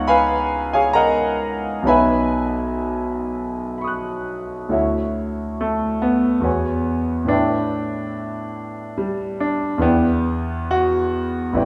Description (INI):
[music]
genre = classical, impressionist solo piano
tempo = 61-72 BPM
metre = 3/4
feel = rubato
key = B major, D major from 4.7 s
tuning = A4 = 440 Hz
[part]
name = clear concert grand piano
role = solo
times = 0.0-11.7 s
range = A1 to F#6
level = -21 LUFS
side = equal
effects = none
[sound]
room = wet recital hall reverb, RT60 1.3 s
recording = none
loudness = -21 LUFS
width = mono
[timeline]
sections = 0.0-4.7 A section; 4.7-11.7 B section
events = none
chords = 0.0 C#9; 1.9 Badd9; 4.7 Dmaj9; 6.5 E69; 7.3 A9sus4; 9.8 Em7